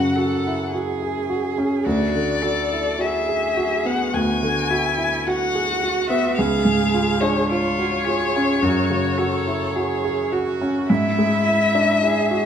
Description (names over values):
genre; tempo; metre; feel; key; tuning
classical, slow romantic movement for piano trio; 53 BPM; 4/4; rubato; F# minor; A4 = 440 Hz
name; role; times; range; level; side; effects
rich violin; melody; 0.0-12.5 s; C#5 to G#5; -22 LUFS; left 5 dB; none
rich cello; second line; 0.0-12.5 s; E4 to A4; -25 LUFS; right 7 dB; none
clear grand piano; accompaniment; 0.0-12.5 s; C#2 to G#4; -21 LUFS; equal; none
room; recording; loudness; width
wet recital hall reverb, RT60 1.4 s; none; -18 LUFS; side -8 dB against mid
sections
0.0-12.5 A section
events
none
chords
0.0 F#5; 1.9 Bm/D; 6.4 C#; 8.6 F#5; 10.9 E/G#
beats
0.72 | 1.86 3.00 4.14 5.27 | 6.38 7.50 8.62 9.74 | 10.89 12.03